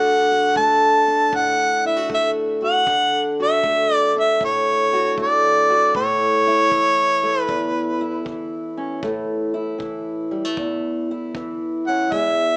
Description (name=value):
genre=acoustic country blues, solo or duo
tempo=78 BPM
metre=4/4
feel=swing 67% on 8ths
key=A major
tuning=A4 = 439 Hz
part: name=warm harmonica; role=melody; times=0.0-12.6 s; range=C#5 to A5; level=-16 LUFS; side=equal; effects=plate reverb
part: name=fingerpicked old ladder-braced acoustic guitar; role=accompaniment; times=0.0-12.6 s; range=E2 to F#4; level=-22 LUFS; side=equal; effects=none
part: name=kick drum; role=drums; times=0.6-12.4 s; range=none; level=-38 LUFS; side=equal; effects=none
room=moderate booth ambience, RT60 0.2 s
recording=small speaker sound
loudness=-16 LUFS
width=side -29 dB against mid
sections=0.0-12.6 A section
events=none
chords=0.0 D; 5.9 A